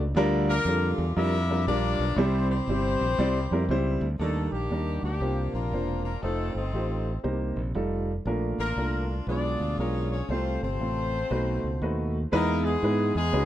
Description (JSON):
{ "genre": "uptempo gospel", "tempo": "118 BPM", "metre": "4/4", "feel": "swing 64% on 8ths", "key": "F major", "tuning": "A4 = 441 Hz", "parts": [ { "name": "modern bright fingered electric bass", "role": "bass", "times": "0.0-13.5 s", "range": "E1 to G#2", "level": "-28 LUFS", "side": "equal", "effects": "none" }, { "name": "warm baby grand piano", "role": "accompaniment", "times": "0.2-13.5 s", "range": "Bb2 to D5", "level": "-28 LUFS", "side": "right 1 dB", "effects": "none" }, { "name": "warm horn section", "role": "melody", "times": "0.5-13.5 s", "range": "G3 to E5", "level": "-30 LUFS", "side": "left 3 dB", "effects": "none" } ], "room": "small room ambience", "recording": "dry, close 1970s-style studio recording", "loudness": "-24 LUFS", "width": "side -12 dB against mid", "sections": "0.0-4.2 A section; 4.2-12.3 B section; 12.3-13.5 A section", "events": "none", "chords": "0.1 Gm7/D; 2.2 C; 4.2 Ebmaj7; 5.2 C9sus4; 6.2 F7; 7.2 Cm7; 7.7 F9; 8.3 Bbmaj7; 9.3 Bdim7; 10.3 F; 11.3 B7; 12.3 Emaj7" }